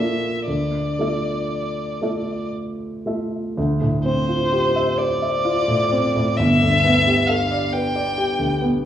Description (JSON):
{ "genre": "classical, impressionist duo for violin and grand piano", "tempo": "56-69 BPM", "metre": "3/4", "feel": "rubato", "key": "D dorian", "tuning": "A4 = 440 Hz", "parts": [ { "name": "rich violin", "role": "melody", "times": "0.0-8.6 s", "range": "C5 to G5", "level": "-22 LUFS", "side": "left 2 dB", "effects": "none" }, { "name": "warm concert grand piano", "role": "accompaniment", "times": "0.0-8.9 s", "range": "G1 to E5", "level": "-20 LUFS", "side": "equal", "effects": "none" } ], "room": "wet recital hall reverb, RT60 1.4 s", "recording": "worn, warbling old tape, cassette tape, warbly pitch drift, studio reverb", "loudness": "-18 LUFS", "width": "side -10 dB against mid", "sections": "0.0-3.6 A section; 3.6-8.9 A section", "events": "none", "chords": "0.5 Dmadd9; 3.6 Dm11; 6.4 Gadd9", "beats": "| 0.46 1.49 2.52 | 3.56 4.51 5.43 | 6.36 7.28 8.16" }